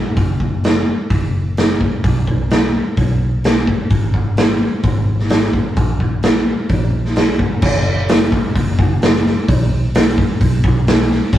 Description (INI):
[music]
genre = rock, shoegaze and dream pop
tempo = 129 BPM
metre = 4/4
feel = straight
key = F# major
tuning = A4 = 440 Hz
[part]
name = vintage muted fingered electric bass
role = bass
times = 0.2-11.4 s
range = F#1 to B1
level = -19 LUFS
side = equal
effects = none
[part]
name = raw garage drum kit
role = drums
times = 0.2-11.4 s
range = crash cymbal, hi-hat, kick drum, snare drum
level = -14 LUFS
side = equal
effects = none
[sound]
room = light reverb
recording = rough rehearsal-room recording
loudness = -13 LUFS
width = side -12 dB against mid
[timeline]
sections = 0.0-7.6 A section; 7.6-11.4 B section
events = none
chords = none